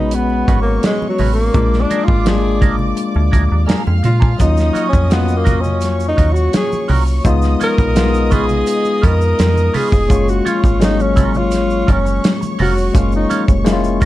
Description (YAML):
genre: lush 1970s-style soul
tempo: 84 BPM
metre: 4/4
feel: straight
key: F# major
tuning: A4 = 439 Hz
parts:
  - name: breathy tenor saxophone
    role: melody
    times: 0.0-13.5 s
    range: F#3 to A#4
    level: -19 LUFS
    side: equal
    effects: none
  - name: rich studio violin section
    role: second line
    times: 0.0-14.1 s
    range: B4 to E#6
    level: -26 LUFS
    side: equal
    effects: none
  - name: bell-like tine electric piano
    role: accompaniment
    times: 0.0-14.1 s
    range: F#3 to F#4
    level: -20 LUFS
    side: left 5 dB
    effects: none
  - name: metallic FM bass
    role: bass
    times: 0.0-14.1 s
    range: E#1 to A#2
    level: -16 LUFS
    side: equal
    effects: none
  - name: clean electric guitar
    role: riff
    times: 0.1-14.1 s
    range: C#4 to C#5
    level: -24 LUFS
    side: right 6 dB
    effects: wah
  - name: modern studio drum kit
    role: drums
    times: 0.1-14.1 s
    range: hi-hat, kick drum, snare drum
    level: -17 LUFS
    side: equal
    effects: none
  - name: congas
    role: percussion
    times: 0.1-14.1 s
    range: none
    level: -27 LUFS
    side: right 4 dB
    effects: none
  - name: tube shaker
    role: percussion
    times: 4.4-14.1 s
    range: none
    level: -40 LUFS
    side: right 6 dB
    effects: none
room: light reverb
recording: dark, warm production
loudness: -12 LUFS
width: side -15 dB against mid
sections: 0.0-14.1 A section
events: tenor saxophone solo 0.0-14.1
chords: 0.0 G#m11; 1.5 A#7; 4.4 D#m7; 7.2 C#7; 10.1 F#maj7